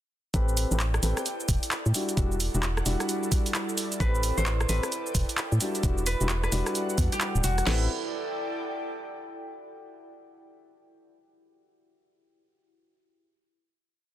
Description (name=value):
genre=UK garage, two-step garage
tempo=131 BPM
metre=4/4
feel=swing 62% on 16ths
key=A minor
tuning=A4 = 442 Hz
part: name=dark grand piano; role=stabs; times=0.3-7.8 s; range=G3 to B4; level=-33 LUFS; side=left 2 dB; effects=tape echo
part: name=organ-like FM bass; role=bass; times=0.3-7.9 s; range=D1 to A2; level=-26 LUFS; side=equal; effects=none
part: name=garage drum kit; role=drums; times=0.3-7.8 s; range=crash cymbal, kick drum, snare drum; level=-28 LUFS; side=equal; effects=none
part: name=punchy analog drum machine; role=drums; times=0.3-7.7 s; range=cabasa, handclaps, hi-hat, rim click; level=-30 LUFS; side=right 1 dB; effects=none
part: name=airy breathy pad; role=texture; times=0.3-9.5 s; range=E4 to G5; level=-36 LUFS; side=right 2 dB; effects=chorus, sidechain pumping
part: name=concert harp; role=melody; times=4.0-7.8 s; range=E4 to C5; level=-35 LUFS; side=right 1 dB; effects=vintage 12-bit sampler grit, dub echo
room=little or no reverb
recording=dense, heavily limited modern master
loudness=-25 LUFS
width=side -13 dB against mid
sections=0.3-7.7 drop; 7.7-9.5 final chord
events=drop 0.3-7.7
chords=0.3 Am9; 1.9 Em9; 4.0 Am9; 5.6 Em9; 7.7 A7(no3)